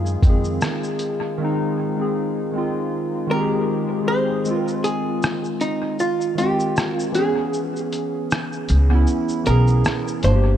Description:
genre	lo-fi hip hop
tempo	78 BPM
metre	4/4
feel	swing 58% on 16ths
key	unclear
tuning	A4 = 439 Hz
part	archtop guitar, miked and amplified	melody	0.0-10.6 s	Eb4 to C5	-24 LUFS	right 1 dB	analog delay
part	warbly lo-fi synth keys	accompaniment	0.0-10.6 s	Eb3 to F5	-22 LUFS	equal	chorus, analog delay
part	upright bass	bass	0.0-0.6, 8.7-10.6 s	G1 to Gb2	-17 LUFS	equal	none
part	lo-fi sampler-style drum kit	drums	0.1-10.4 s	hi-hat, kick drum, rim click, shaker	-23 LUFS	equal	vintage 12-bit sampler grit, analog delay
room	light reverb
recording	echo-heavy mix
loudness	-18 LUFS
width	side -10 dB against mid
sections	0.0-4.5 A section; 4.5-10.6 B section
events	kick muted 4.5-10.6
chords	0.0 Fm7; 7.1 Dbm7

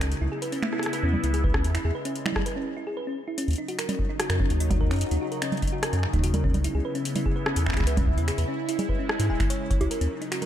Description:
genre	IDM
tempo	147 BPM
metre	4/4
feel	straight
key	Eb phrygian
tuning	A4 = 437 Hz
part	phased analog pad	sustained chords	0.0-10.5 s	Db3 to Fb4	-32 LUFS	left 1 dB	phaser, chorus
part	thumb-piano-like synth pluck	arpeggios	0.0-10.5 s	Db4 to G#5	-32 LUFS	right 1 dB	chorus, cassette tape, ping-pong delay
part	round analog bass	bass	0.0-10.1 s	E1 to G#2	-25 LUFS	equal	none
part	electro analog drum machine	drums	0.0-10.5 s	congas, finger snaps, hi-hat, rim click	-31 LUFS	right 1 dB	ping-pong delay
part	electronic kick drum	drums	1.4-9.8 s	none	-26 LUFS	equal	none
room	light reverb, digital ambience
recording	none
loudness	-24 LUFS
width	side -11 dB against mid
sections	0.0-3.4 A section; 3.4-10.5 A section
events	break 2.6-3.4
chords	0.1 Dbm7; 1.7 E6; 3.4 Ebm7; 6.6 Dbm7; 8.3 E6; 9.9 Ebm7

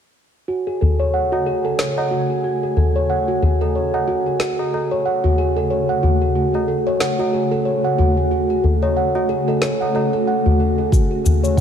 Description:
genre	organic downtempo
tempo	92 BPM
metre	4/4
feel	swing 57% on 16ths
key	F# minor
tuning	A4 = 440 Hz
part	granular cloud pad	sustained chords	1.0-11.6 s	C#3 to G#5	-24 LUFS	left 2 dB	built-in reverb, sidechain pumping
part	steel tongue drum	arpeggios	0.5-11.6 s	F#4 to F#5	-19 LUFS	right 2 dB	low-pass filter, tape echo
part	tabla	percussion	0.8-11.4 s	none	-20 LUFS	left 2 dB	none
part	electronic snare drum and shaker	drums	1.8-11.6 s	none	-25 LUFS	equal	studio reverb
part	electronic kick drum	drums	10.9-11.6 s	none	-15 LUFS	equal	studio reverb
room	moderate echo chamber reverb, RT60 2.1 s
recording	none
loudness	-16 LUFS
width	side -8 dB against mid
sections	0.5-11.6 A section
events	none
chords	0.5 F#madd9

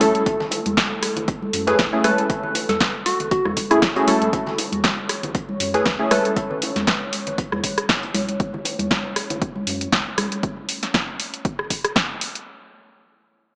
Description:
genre	deep house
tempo	118 BPM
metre	4/4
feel	swing 55% on 16ths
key	F# minor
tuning	A4 = 439 Hz
part	soft struck synth lead	melody	0.0-6.2 s	E4 to B4	-24 LUFS	equal	chorus, dub echo
part	deep dark ambient pad	sustained chords	0.0-10.4 s	A3 to C#5	-31 LUFS	equal	chorus, built-in reverb, sidechain pumping
part	warm analog keys	stabs	0.0-6.3 s	A3 to A4	-21 LUFS	equal	chorus, sidechain pumping, analog delay
part	round analog bass	bass	0.0-10.3 s	E1 to F#2	-35 LUFS	equal	sidechain pumping
part	dusty soul sampler-style drum kit	drums	0.0-8.3 s	hi-hat, snare drum	-31 LUFS	equal	none
part	punchy analog drum machine	drums	0.0-12.4 s	hi-hat, rim click, snare drum	-22 LUFS	equal	none
part	congas and bongos	percussion	0.0-10.3 s	none	-28 LUFS	equal	dub echo
part	electronic kick drum	drums	0.3-12.1 s	none	-27 LUFS	equal	none
room	moderate spring reverb, RT60 2.3 s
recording	echo-heavy mix, small speaker sound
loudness	-19 LUFS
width	side -34 dB against mid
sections	0.0-12.5 A section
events	drop 0.0-12.5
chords	0.0 F#m7

